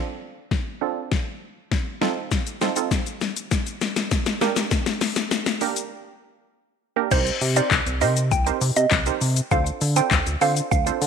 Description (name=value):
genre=dance-pop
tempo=100 BPM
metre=4/4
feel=straight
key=unclear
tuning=A4 = 439 Hz
part: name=wavetable chord stab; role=accompaniment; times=0.0-11.1 s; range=Bb3 to C5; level=-26 LUFS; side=right 14 dB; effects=low-pass filter
part: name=smooth R&B drum kit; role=drums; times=0.5-11.1 s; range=crash cymbal, handclaps, hi-hat, kick drum, shaker, snare drum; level=-23 LUFS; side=left 4 dB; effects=none
part: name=mallet-like synth pluck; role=melody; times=7.1-10.8 s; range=C5 to G5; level=-24 LUFS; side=right 2 dB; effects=chorus, phaser, slapback echo
part: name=chorused synth bass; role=bass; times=7.1-11.1 s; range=C2 to D3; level=-23 LUFS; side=equal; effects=sidechain pumping
room=moderate echo chamber reverb, RT60 1.5 s, digital ambience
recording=1960s-style stereo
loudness=-20 LUFS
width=side -6 dB against mid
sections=0.0-7.1 A section; 7.1-11.1 B section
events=build-up 0.0-7.1; drum fill 0.0-5.9; filter sweep on synth stab 0.0-7.1; break 5.9-7.1; drop 7.1-11.1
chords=0.0 Dm7; 2.0 F7; 4.4 Gm; 7.1 Cm7; 9.5 Dm7